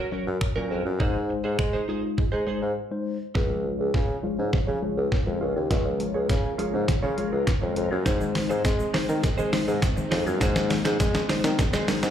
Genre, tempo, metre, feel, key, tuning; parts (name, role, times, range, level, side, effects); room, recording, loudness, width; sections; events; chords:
dance-pop; 102 BPM; 4/4; straight; Db major; A4 = 440 Hz
direct-recorded clean electric guitar; riff; 0.0-12.1 s; Db4 to Db5; -34 LUFS; right 6 dB; lush chorus, low-pass filter, slapback echo
mellow bassoon; bass; 0.0-12.1 s; Db2 to Ab3; -27 LUFS; equal; sidechain pumping
mellow tine electric piano; accompaniment; 0.1-12.1 s; Gb3 to Eb5; -31 LUFS; left 4 dB; medium stereo tremolo, low-pass filter, plate reverb, slapback echo
detuned 8-bit digital drum machine; drums; 0.4-12.1 s; finger snaps, hi-hat, kick drum, shaker, snare drum; -25 LUFS; equal
string machine, full ensemble; sustained chords; 3.4-12.1 s; Db3 to Bb4; -34 LUFS; left 1 dB; ensemble chorus, sidechain pumping, low-pass filter, plate reverb
mallet-like synth pluck; arpeggios; 3.4-12.1 s; Eb3 to Ab6; -35 LUFS; left 2 dB; chorus, sidechain pumping, low-pass filter, ping-pong delay, plate reverb, slapback echo
riser; sound effects; 6.5-12.1 s; -39 LUFS; equal
egg shaker; percussion; 8.1-12.1 s; -49 LUFS; left 3 dB
moderate club reverb, RT60 0.8 s; live gig heard through the venue's PA, club reverb; -23 LUFS; side -10 dB against mid
0.0-3.4 A section; 3.4-12.1 B section
break 2.8-3.4; build-up 3.4-12.1; drum fill 3.4-12.1; filter sweep 3.4-12.1
0.0 Gb; 1.0 Ab; 3.4 Db; 8.1 Ab